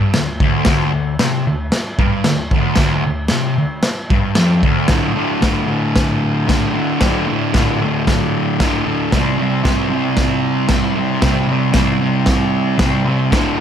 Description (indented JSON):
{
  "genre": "garage rock duo or trio",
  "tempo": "114 BPM",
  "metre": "4/4",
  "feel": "straight",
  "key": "unclear",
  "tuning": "A4 = 440 Hz",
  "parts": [
    { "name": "fuzz guitar", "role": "riff", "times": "0.0-13.6 s", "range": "D2 to C4", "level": "-16 LUFS", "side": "equal", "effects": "distortion" },
    { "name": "crunchy breakbeat drum kit", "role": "drums", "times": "0.1-13.4 s", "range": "crash cymbal, kick drum, snare drum", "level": "-18 LUFS", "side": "equal", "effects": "none" }
  ],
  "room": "light reverb",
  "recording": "none",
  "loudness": "-14 LUFS",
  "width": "side -8 dB against mid",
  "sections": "0.0-4.9 A section; 4.9-13.6 B section",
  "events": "none",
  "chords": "0.0 Dsus4; 4.9 D5; 9.1 C5"
}